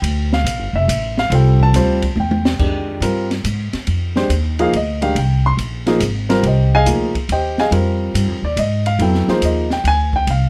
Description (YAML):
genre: modal jazz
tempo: 141 BPM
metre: 3/4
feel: swing 67% on 8ths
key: F dorian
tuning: A4 = 440 Hz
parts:
  - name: warm grand piano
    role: accompaniment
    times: 0.0-10.5 s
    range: Eb3 to C6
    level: -20 LUFS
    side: equal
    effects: none
  - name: upright bass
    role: bass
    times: 0.0-10.5 s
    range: F1 to Ab2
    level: -20 LUFS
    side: equal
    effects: none
  - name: open jazz drum kit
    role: drums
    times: 0.0-10.4 s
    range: crash cymbal, hi-hat, kick drum, ride cymbal, snare drum, toms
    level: -26 LUFS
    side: equal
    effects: none
room: light reverb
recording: none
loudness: -17 LUFS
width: mono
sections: 0.0-2.6 A section; 2.6-10.5 A section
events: drum fill 2.2-2.6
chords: 0.0 G9sus4; 2.6 Fm9